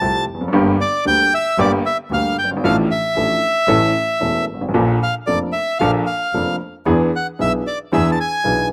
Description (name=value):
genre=tango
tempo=114 BPM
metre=4/4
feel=rubato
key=unclear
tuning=A4 = 441 Hz
part: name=bandoneon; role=melody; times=0.0-8.7 s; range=D5 to A5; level=-21 LUFS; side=equal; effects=none
part: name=warm upright piano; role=accompaniment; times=0.0-8.7 s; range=E1 to A4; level=-21 LUFS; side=equal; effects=none
part: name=clear double bass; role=bass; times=0.0-8.7 s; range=E1 to E2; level=-26 LUFS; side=equal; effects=none
room=little or no reverb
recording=recorded outdoors, with no room sound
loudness=-18 LUFS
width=mono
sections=0.0-8.7 A section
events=none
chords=0.0 Fadd9; 0.5 Gm; 2.6 Dm/A; 3.7 A; 4.8 Bbmaj7; 6.9 E7